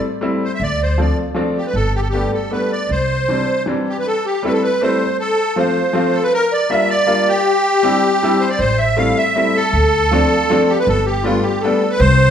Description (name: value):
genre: musette waltz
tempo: 158 BPM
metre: 3/4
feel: straight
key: C major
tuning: A4 = 441 Hz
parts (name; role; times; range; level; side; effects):
- bright upright piano; accompaniment; 0.0-11.8 s; E3 to F4; -19 LUFS; left 1 dB; none
- musette accordion; melody; 0.4-12.3 s; F4 to F5; -16 LUFS; right 1 dB; none
- upright bass; bass; 0.6-3.4, 8.6-12.3 s; G1 to D2; -18 LUFS; equal; none
room: wet large studio reverb, RT60 1.2 s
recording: band playing live in one room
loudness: -14 LUFS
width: side -8 dB against mid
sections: 0.0-4.0 A section; 4.0-12.3 A section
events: none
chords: 0.0 Am7; 0.6 Dm7; 1.7 Gadd9; 2.9 Cadd9; 4.0 C6; 5.2 F; 6.3 Bb6; 7.5 Cadd9; 8.6 Am7; 9.7 Dm7; 10.9 Gadd9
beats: 0.22 | 0.60 0.98 1.36 | 1.74 2.12 2.51 | 2.89 3.27 3.66 | 4.04 4.43 4.81 | 5.19 5.57 5.95 | 6.32 6.70 7.07 | 7.45 7.83 8.21 | 8.59 8.98 9.36 | 9.74 10.12 10.50 | 10.87 11.25 11.63 | 12.00